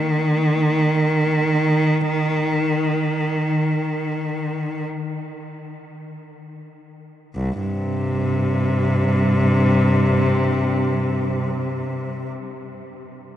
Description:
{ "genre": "classical, free, expressive piece for unaccompanied cello", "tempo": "free time", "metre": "none", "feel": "none", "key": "C minor", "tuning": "A4 = 440 Hz", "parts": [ { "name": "rich cello", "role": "solo", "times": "0.0-12.3 s", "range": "C2 to Eb3", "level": "-19 LUFS", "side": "equal", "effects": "none" } ], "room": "wet huge ambient reverb, RT60 8.0 s", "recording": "in a vast, echoing space, nothing above 10.9 kHz", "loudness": "-18 LUFS", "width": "side -11 dB against mid", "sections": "0.0-7.3 A section; 7.3-13.4 B section", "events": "slowing down 0.0-7.3", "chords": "none" }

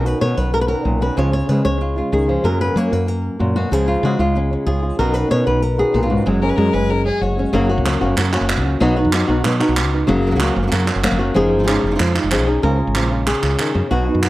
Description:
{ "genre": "flamenco", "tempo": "188 BPM", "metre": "4/4", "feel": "straight", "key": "F# major", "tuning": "A4 = 437 Hz", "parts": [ { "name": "flamenco guitar", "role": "melody", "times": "0.0-14.3 s", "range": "F#2 to C#5", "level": "-18 LUFS", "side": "left 1 dB", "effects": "slapback echo" }, { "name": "flamenco guitar", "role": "stabs", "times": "0.0-14.3 s", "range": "B2 to G#4", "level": "-24 LUFS", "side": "right 4 dB", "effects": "none" }, { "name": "woody fretless electric bass", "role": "bass", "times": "0.0-14.3 s", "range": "E#1 to F#3", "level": "-20 LUFS", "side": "equal", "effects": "none" }, { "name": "clear violin", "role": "second line", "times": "6.4-7.5 s", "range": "F#4 to B4", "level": "-23 LUFS", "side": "left 4 dB", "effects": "none" }, { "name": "palmas hand claps", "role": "percussion", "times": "7.9-14.3 s", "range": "none", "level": "-22 LUFS", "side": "right 4 dB", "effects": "none" } ], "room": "little or no reverb", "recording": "dry, close 1970s-style studio recording", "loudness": "-15 LUFS", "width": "side -17 dB against mid", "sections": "0.0-7.5 A section; 7.5-12.6 B section; 12.6-14.3 C section", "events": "none", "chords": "0.0 Badd9; 1.2 C#; 2.4 F#; 3.7 C#; 5.0 Badd9; 6.3 F#sus2; 7.5 F#; 8.8 B; 10.1 F#; 11.4 C#add9/E#; 12.6 C#" }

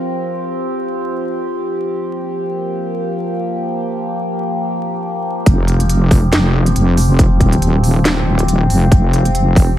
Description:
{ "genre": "deep dubstep", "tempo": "139 BPM", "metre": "4/4", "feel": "swing 56% on 16ths, half-time", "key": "unclear", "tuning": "A4 = 438 Hz", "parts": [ { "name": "overtone-sweeping drone", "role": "sustained chords", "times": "0.0-9.8 s", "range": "F3 to G4", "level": "-20 LUFS", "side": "left 1 dB", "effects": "chorus, built-in reverb" }, { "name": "wobble bass", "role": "bass", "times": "5.5-9.8 s", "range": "Eb1 to F1", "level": "-13 LUFS", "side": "equal", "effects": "chorus" }, { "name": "electronic kick drum", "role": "drums", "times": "5.5-9.7 s", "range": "none", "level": "-12 LUFS", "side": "equal", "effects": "overdrive" }, { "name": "garage drum kit", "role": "drums", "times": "5.5-9.7 s", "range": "hi-hat, snare drum", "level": "-20 LUFS", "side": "equal", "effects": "none" } ], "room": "little or no reverb", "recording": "vinyl crackle", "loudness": "-13 LUFS", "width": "side -12 dB against mid", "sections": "0.0-5.5 A section; 5.5-9.8 B section", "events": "drop 5.5-9.8", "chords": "0.0 Fsus2" }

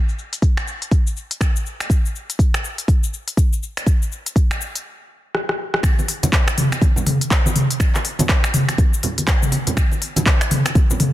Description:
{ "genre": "house", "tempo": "122 BPM", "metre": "4/4", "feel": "swing 60% on 16ths", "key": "none", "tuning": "none", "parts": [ { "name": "afro-pop drum kit", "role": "drums", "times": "0.1-11.1 s", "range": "cabasa, finger snaps, handclaps, hi-hat, rim click, toms", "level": "-21 LUFS", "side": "left 1 dB", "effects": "low-pass filter on perc, low-pass filter on hats, soft clipping on snare, low-pass filter on snare, low-pass filter on toms, low-pass filter on cymbals, low-pass filter on room" }, { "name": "electronic kick drum", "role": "drums", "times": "0.4-10.9 s", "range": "none", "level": "-16 LUFS", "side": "equal", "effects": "none" }, { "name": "congas", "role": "percussion", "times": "5.8-11.1 s", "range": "none", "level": "-24 LUFS", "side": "right 1 dB", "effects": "none" } ], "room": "little or no reverb", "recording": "dense, heavily limited modern master", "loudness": "-16 LUFS", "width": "side -14 dB against mid", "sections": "0.0-5.8 A section; 5.8-11.1 B section", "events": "filter sweep on drum 0.0-5.8; stop 4.9-5.8; drum fill 5.3-5.8; drop 5.8-11.1", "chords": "none" }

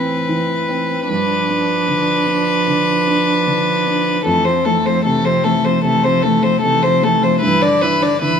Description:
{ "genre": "neoclassical piano and strings", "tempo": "76 BPM", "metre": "4/4", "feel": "rubato", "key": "unclear", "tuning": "A4 = 440 Hz", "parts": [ { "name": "rich violin", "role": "melody", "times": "0.0-8.4 s", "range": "A4 to D5", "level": "-16 LUFS", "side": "left 3 dB", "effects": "none" }, { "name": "warm cello", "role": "second line", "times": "0.0-8.4 s", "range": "D3 to F3", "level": "-22 LUFS", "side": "right 8 dB", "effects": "none" }, { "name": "felt-muted upright piano", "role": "accompaniment", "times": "0.0-8.4 s", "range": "F2 to D4", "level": "-20 LUFS", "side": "left 3 dB", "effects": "none" }, { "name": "warm viola", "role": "accompaniment", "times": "0.0-8.4 s", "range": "A3 to E4", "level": "-22 LUFS", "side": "right 5 dB", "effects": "none" } ], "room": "wet large studio reverb, RT60 1.3 s", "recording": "minimal, uncompressed stereo recording", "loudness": "-13 LUFS", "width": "side -7 dB against mid", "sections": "0.0-8.4 A section", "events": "none", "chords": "0.0 Amadd9; 1.1 G7; 4.3 Fmaj7; 7.4 Em7/G" }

